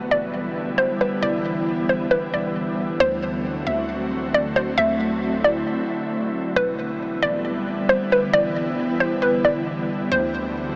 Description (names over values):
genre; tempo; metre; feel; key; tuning
hip hop, atmospheric cloud-rap; 135 BPM; 4/4; half-time; E minor; A4 = 442 Hz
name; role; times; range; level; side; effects
hollow square pluck; melody; 0.0-10.7 s; B4 to E5; -24 LUFS; equal; chorus, digital delay
ethereal airy pad; sustained chords; 0.0-10.8 s; D3 to F#4; -26 LUFS; equal; ensemble chorus, built-in reverb
soft 808-style bass; bass; 0.0-10.8 s; E1 to D2; -39 LUFS; equal; none
room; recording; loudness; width
moderate huge ambient reverb, RT60 7.8 s; small speaker sound; -22 LUFS; mono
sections
0.0-6.6 A section; 6.6-10.8 B section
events
break 5.7-6.6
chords
0.0 Em7; 3.0 D7; 6.6 Em7; 10.1 D7